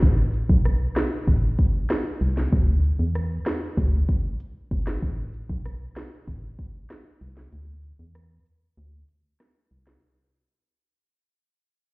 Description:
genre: dancehall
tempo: 96 BPM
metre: 4/4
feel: straight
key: unclear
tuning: A4 = 439 Hz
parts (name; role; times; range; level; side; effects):
- organ-like FM bass; bass; 0.0-10.0 s; G1 to E2; -24 LUFS; equal; none
- afro-pop drum kit; drums; 0.0-10.0 s; hi-hat, kick drum, rim click, snare drum; -23 LUFS; equal; none
room: light reverb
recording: heard muffled through a wall, stone room reverb, EQ, nothing above 7.9 kHz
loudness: -21 LUFS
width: side -25 dB against mid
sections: 0.0-10.0 A section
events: fade-out 0.0-10.0; break 7.5-10.0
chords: none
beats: | 0.03 0.65 1.28 1.90 | 2.53 3.15 3.78 4.40 | 5.03 5.65 6.28 6.90 | 7.53 8.15 8.78 9.40

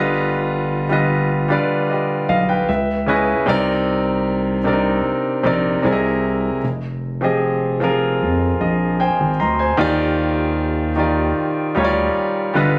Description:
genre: contemporary R&B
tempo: 76 BPM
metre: 4/4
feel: straight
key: Eb major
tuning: A4 = 439 Hz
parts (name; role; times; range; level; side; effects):
- clear concert grand piano; accompaniment; 0.0-12.8 s; C3 to C6; -20 LUFS; equal; none
- rubbery square bass; bass; 0.0-12.8 s; F1 to F2; -24 LUFS; equal; none
room: light reverb, small room ambience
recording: recorded on a phone in the room, studio reverb, compression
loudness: -19 LUFS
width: mono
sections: 0.0-12.8 A section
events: grand piano fill 1.9-3.5, 8.2-9.8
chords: 0.0 G7b13; 2.7 Dbm9; 3.5 Cm9; 5.8 C7alt; 6.6 Fm9; 9.8 Ebmaj7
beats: | 0.31 1.10 1.89 2.68 | 3.47 4.26 5.05 5.84 | 6.63 7.42 8.21 9.00 | 9.79 10.58 11.37 12.16

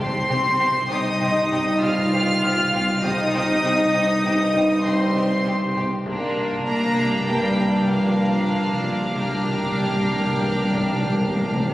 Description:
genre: cinematic, suspense film score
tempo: 98 BPM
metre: 5/4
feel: straight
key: C minor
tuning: A4 = 440 Hz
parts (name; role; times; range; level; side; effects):
- warm studio violin section; melody; 0.0-11.7 s; F5 to F6; -26 LUFS; equal; none
- rich studio violin section; second line; 0.0-11.7 s; Bb3 to G4; -27 LUFS; equal; none
- dark studio viola section; accompaniment; 0.0-11.7 s; Bb3 to F5; -27 LUFS; equal; none
- mellow French horn section; sustained chords; 0.0-11.7 s; Bb3 to Eb4; -31 LUFS; left 1 dB; none
- warm trombone section; sustained chords; 0.0-11.7 s; G2 to G3; -26 LUFS; equal; none
- rubbery square bass; riff; 0.0-11.7 s; C3; -34 LUFS; equal; none
- dark chamber cello section; bass; 0.0-11.7 s; F3 to F4; -26 LUFS; right 1 dB; none
- warm chamber double bass section; bass; 0.0-11.7 s; C2; -34 LUFS; right 1 dB; none
- timpani; percussion; 0.0-0.9, 6.1-11.7 s; C3; -29 LUFS; equal; none
- taiko ensemble; drums; 0.2-11.7 s; none; -37 LUFS; equal; none
- warm symphonic violin section; texture; 6.1-11.7 s; Bb5 to F6; -33 LUFS; equal; none
room: wet church reverb, RT60 3.2 s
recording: recorded on a phone in the room, studio reverb, compression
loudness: -18 LUFS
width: side -16 dB against mid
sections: 0.0-11.7 A section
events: timpani fill 6.1-11.7; drum fill 11.5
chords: 0.0 Cm; 6.1 Bb6/C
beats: | 0.01 0.61 1.22 1.82 2.43 | 3.03 3.64 4.25 4.86 5.46 | 6.07 6.68 7.29 7.91 8.53 | 9.17 9.80 10.43 11.07 11.69

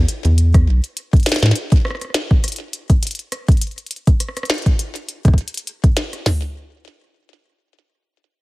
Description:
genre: IDM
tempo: 102 BPM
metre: 4/4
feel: swing 56% on 16ths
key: unclear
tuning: A4 = 440 Hz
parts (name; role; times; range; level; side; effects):
- rubbery square bass; bass; 0.0-1.5 s; B1 to A2; -13 LUFS; equal; none
- glitchy drum kit; drums; 0.1-6.2 s; hi-hat, rim click, snare drum; -23 LUFS; equal; digital delay
- glitchy drum kit; drums; 0.5-6.4 s; hi-hat, kick drum, snare drum, toms; -13 LUFS; equal; none
room: little or no reverb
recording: none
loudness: -15 LUFS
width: side -21 dB against mid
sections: 0.0-6.3 A section; 6.3-8.4 B section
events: none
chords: none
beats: 0.38 0.97 | 1.55 2.14 2.73 3.32 | 3.91 4.50 5.08 5.67 | 6.26

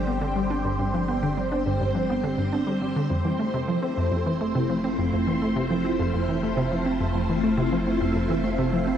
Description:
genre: ambient, sequencer-driven space music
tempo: 104 BPM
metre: 4/4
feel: straight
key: F major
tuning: A4 = 441 Hz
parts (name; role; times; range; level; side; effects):
- phased string machine; sustained chords; 0.0-9.0 s; D3 to C5; -26 LUFS; equal; ensemble chorus, phaser
- round analog bass; bass; 0.0-9.0 s; F1 to G1; -34 LUFS; equal; none
- bubbling stepped-filter texture; texture; 0.0-3.1 s; G5; -44 LUFS; right 2 dB; none
- resonant blip pluck; riff; 0.1-9.0 s; F2 to D4; -25 LUFS; equal; chorus, tape echo
room: wet huge ambient reverb, RT60 7.5 s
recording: dark, warm production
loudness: -22 LUFS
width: side -9 dB against mid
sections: 0.0-3.1 A section; 3.1-9.0 B section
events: none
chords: 0.0 Gsus4; 3.1 Fmaj7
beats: 0.22 | 0.80 1.37 1.95 2.53 | 3.10 3.68 4.26 4.83 | 5.41 5.99 6.57 7.14 | 7.72 8.30 8.87

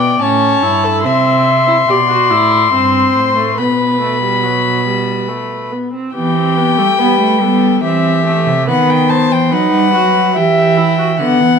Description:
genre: classical, baroque-style fugue for string quartet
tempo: 71 BPM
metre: 3/4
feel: straight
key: E minor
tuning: A4 = 440 Hz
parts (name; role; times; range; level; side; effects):
- rich violin; melody; 0.0-11.6 s; E5 to C6; -15 LUFS; left 9 dB; none
- dark violin; second line; 0.0-11.2 s; G4 to E5; -17 LUFS; equal; none
- rich viola; accompaniment; 0.0-11.6 s; F#3 to G4; -16 LUFS; equal; none
- rich cello; bass; 0.0-11.6 s; G2 to B3; -17 LUFS; right 7 dB; none
room: moderate recital hall reverb, RT60 1.6 s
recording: minimal, uncompressed stereo recording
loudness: -10 LUFS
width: side -6 dB against mid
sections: 0.0-6.1 A section; 6.1-11.6 B section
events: none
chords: 0.2 A; 1.0 Am; 3.6 B5; 6.1 Em; 7.8 C/E; 8.7 B/D#; 10.3 Em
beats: 0.21 | 1.05 1.89 2.73 | 3.58 4.43 5.29 | 6.14 6.99 7.83 | 8.68 9.51 10.35 | 11.19

